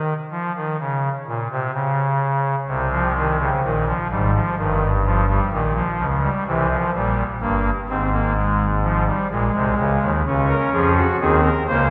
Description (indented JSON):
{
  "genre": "classical, baroque-style 4-part fugue for pipe organ",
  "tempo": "64 BPM",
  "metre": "4/4",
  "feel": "straight",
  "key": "unclear",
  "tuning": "A4 = 438 Hz",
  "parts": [
    { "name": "pipe organ, soft reed", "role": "solo", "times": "0.0-11.9 s", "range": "G1 to C5", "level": "-20 LUFS", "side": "equal", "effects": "none" }
  ],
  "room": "wet scoring stage reverb, RT60 2.1 s",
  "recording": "heard from further back in the room",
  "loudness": "-20 LUFS",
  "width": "mono",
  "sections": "0.0-11.9 A section",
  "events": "none",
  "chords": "0.0 N.C.; 2.7 Fm/C; 4.6 Eb/G; 6.5 C7(no3); 8.4 Fm/Ab (rootless); 10.2 Bbm/Db",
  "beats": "0.80 1.75 | 2.69 3.63 4.58 5.52 | 6.47 7.41 8.36 9.30 | 10.25 11.19"
}